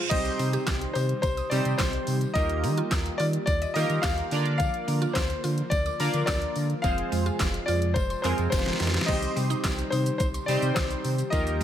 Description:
dance-pop; 107 BPM; 4/4; straight; C minor; A4 = 440 Hz
clear concert grand piano; melody; 0.0-11.6 s; C5 to F5; -30 LUFS; left 3 dB; tape echo
airy breathy pad; sustained chords; 0.0-11.6 s; C3 to Bb4; -37 LUFS; equal; chorus, sidechain pumping
mallet-like synth pluck; arpeggios; 0.0-11.6 s; Eb3 to Eb6; -36 LUFS; right 2 dB; chorus, sidechain pumping, tape echo
chorused retro synth keys; accompaniment; 0.1-11.6 s; G3 to D5; -31 LUFS; right 2 dB; sidechain pumping
sub bass with octave; bass; 0.1-11.6 s; F1 to Eb3; -28 LUFS; equal; sidechain pumping
pop drum kit; drums; 0.1-11.6 s; crash cymbal, handclaps, hi-hat, kick drum, shaker, snare drum; -29 LUFS; equal; overdrive
tambourine; percussion; 0.1-11.6 s; -45 LUFS; left 11 dB
light reverb; -24 LUFS; side -10 dB against mid
0.1-11.6 A section
drum fill 8.5-9.1
0.1 Cm; 2.4 Ebadd9; 4.3 Bb/D; 6.8 Fm; 9.1 Cm

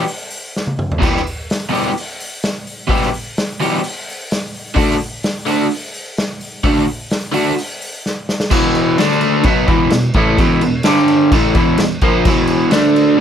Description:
garage rock duo or trio; 128 BPM; 4/4; straight; E minor; A4 = 441 Hz
overdriven electric guitar; riff; 0.0-13.2 s; E2 to G4; -13 LUFS; equal
vintage drum kit; drums; 0.1-13.1 s; crash cymbal, hi-hat, kick drum, snare drum, toms; -19 LUFS; equal
light reverb; -14 LUFS; side -9 dB against mid
0.0-8.5 A section; 8.5-13.2 B section
drum fill 0.5-1.0, 8.0-8.5
0.0 Em; 4.8 D; 8.5 E5; 9.0 D5; 9.4 E5; 10.8 G5; 11.3 E5; 12.7 D5

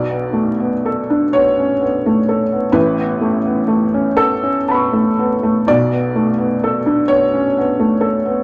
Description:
neoclassical minimalist piano; 39-44 BPM (dotted quarters); 6/8; rubato; B minor; A4 = 442 Hz
felt-muted upright piano; solo; 0.0-8.4 s; A1 to C#6; -16 LUFS; equal
moderate large studio reverb, RT60 0.9 s; vinyl crackle, nothing above 10.8 kHz; -16 LUFS; mono
0.0-8.4 A section
0.0 Bm7; 2.7 Aadd9; 5.7 Bm7

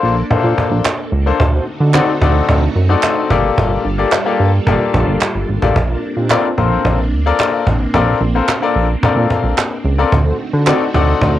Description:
early-eighties boogie funk; 110 BPM; 4/4; straight; Bb major; A4 = 440 Hz
bright grand piano; accompaniment; 0.0-11.3 s; Bb3 to D5; -16 LUFS; left 6 dB; cassette tape
phased string machine; sustained chords; 0.0-11.4 s; D3 to A4; -24 LUFS; right 2 dB; ensemble chorus, phaser, cassette tape
chorused synth bass; bass; 0.0-11.4 s; G1 to D3; -15 LUFS; right 1 dB; tube saturation
cajon; drums; 0.3-11.3 s; -18 LUFS; right 1 dB; cassette tape
group handclap; percussion; 0.9-10.8 s; -23 LUFS; right 8 dB
mellow synth brass; second line; 1.5-2.2, 5.9-6.5, 10.3-10.9 s; C4 to C5; -22 LUFS; right 2 dB; chorus, cassette tape
light reverb; home recording on cassette; -12 LUFS; side -13 dB against mid
0.0-11.4 A section
0.0 Bbmaj9; 1.4 D7b9; 3.3 Gm9; 5.8 Bbmaj9; 10.1 D7b9

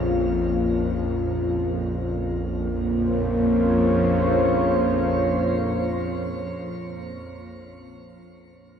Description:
dark ambient drone; free time; Bb minor; A4 = 439 Hz
deep dark ambient pad; sustained chords; 0.0-6.7 s; Bb3 to Db5; -23 LUFS; equal; chorus, built-in reverb, shimmer reverb
bowed-like drone; drone; 0.0-6.6 s; Bb1 to F2; -26 LUFS; equal; built-in reverb
wet cathedral reverb, RT60 5.2 s; -20 LUFS; side -8 dB against mid
0.0-2.2 A section; 2.2-5.9 B section
0.0 Bbmadd9

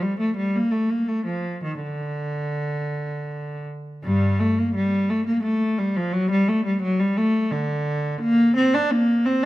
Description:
classical, baroque-style suite movement for unaccompanied cello; 79-88 BPM; 3/4; rubato; G minor from 4.0 s; A4 = 441 Hz
dark cello; solo; 0.0-9.4 s; G2 to D4; -20 LUFS; equal
moderate recital hall reverb, RT60 1.7 s; close, detailed microphones; -20 LUFS; side -16 dB against mid
0.0-4.0 A section; 4.0-9.5 A section

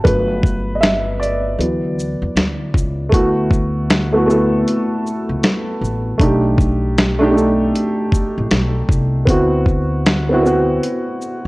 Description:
lo-fi hip hop; 78 BPM; 4/4; swing 65% on 16ths; D major; A4 = 440 Hz
dark upright piano; accompaniment; 0.0-11.5 s; E3 to E5; -17 LUFS; equal; cassette tape
upright bass; bass; 0.1-11.5 s; G1 to E2; -20 LUFS; equal
dusty soul sampler-style drum kit; drums; 0.1-11.4 s; hi-hat, kick drum, shaker, snare drum; -16 LUFS; equal; overdrive
light reverb, studio reverb; worn, warbling old tape, cassette tape, warbly pitch drift; -14 LUFS; side -21 dB against mid
0.0-3.1 A section; 3.1-11.5 B section
upright piano solo 0.0-3.1
0.0 Gmaj7; 1.6 D6; 3.1 D69; 6.2 B7alt; 9.3 D13

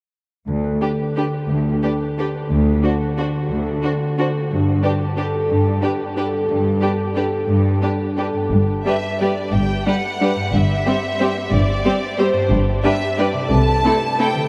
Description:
classical, orchestral ballroom waltz; 179 BPM; 3/4; uneven beats, rubato; G major; A4 = 438 Hz
concert harp; arpeggios; 0.5-14.5 s; G2 to C5; -25 LUFS; equal
rich studio cello section; bass; 0.5-13.8 s; D2 to C3; -24 LUFS; equal
rich studio violin section; melody; 0.8-14.5 s; B4 to A5; -27 LUFS; equal
rich studio violin section; second line; 0.8-14.3 s; E4 to C5; -28 LUFS; equal
rich studio viola section; accompaniment; 0.8-14.3 s; G3 to D4; -27 LUFS; equal
rich studio double bass section; bass; 8.5-13.8 s; G1 to C2; -22 LUFS; equal
wet huge ambient reverb, RT60 8.2 s; in a vast, echoing space; -19 LUFS; mono
0.5-8.5 A section; 8.5-14.5 B section
0.5 G/D; 2.5 D7; 4.5 G; 13.5 Am/C

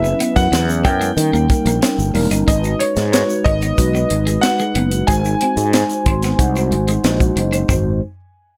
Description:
polished 1980s jazz-funk pop; 92 BPM; 4/4; straight; G# minor; A4 = 440 Hz
clear concert grand piano; melody; 0.0-7.0 s; C#5 to G#5; -24 LUFS; equal
mellow tine electric piano; accompaniment; 0.0-8.0 s; F#3 to B#5; -22 LUFS; equal; ensemble chorus
twelve-string electric guitar; riff; 0.0-7.9 s; G#3 to D#4; -27 LUFS; equal; lush chorus
sustaining fretless electric bass; bass; 0.0-8.0 s; E1 to D#3; -21 LUFS; equal
egg shaker; percussion; 0.0-8.0 s; -34 LUFS; equal
tight funk drum kit; drums; 0.2-7.8 s; hi-hat, kick drum, snare drum, toms; -21 LUFS; equal
little or no reverb; -16 LUFS; mono
0.0-2.5 A section; 2.5-7.7 B section
tine electric piano fill 5.7-7.7
0.0 F#7sus4; 1.2 D#7; 2.5 G#m7; 5.1 G#7

